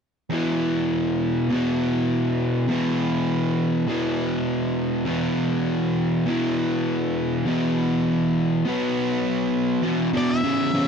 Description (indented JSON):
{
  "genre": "rock",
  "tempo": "101 BPM",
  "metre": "4/4",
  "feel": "straight",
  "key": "unclear",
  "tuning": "A4 = 440 Hz",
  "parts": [
    { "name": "overdriven electric guitar", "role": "riff", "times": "0.3-10.9 s", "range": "E2 to B3", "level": "-21 LUFS", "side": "equal", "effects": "none" },
    { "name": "octave-fuzz lead guitar", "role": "melody", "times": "10.2-10.9 s", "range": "D5 to E5", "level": "-25 LUFS", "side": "left 3 dB", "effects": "distortion" }
  ],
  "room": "moderate booth ambience, RT60 0.2 s",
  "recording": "dry, close 1970s-style studio recording",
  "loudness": "-21 LUFS",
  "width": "side -6 dB against mid",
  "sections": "0.3-9.8 A section; 9.8-10.9 B section",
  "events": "none",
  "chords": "0.3 E5; 8.7 B5; 9.8 E5"
}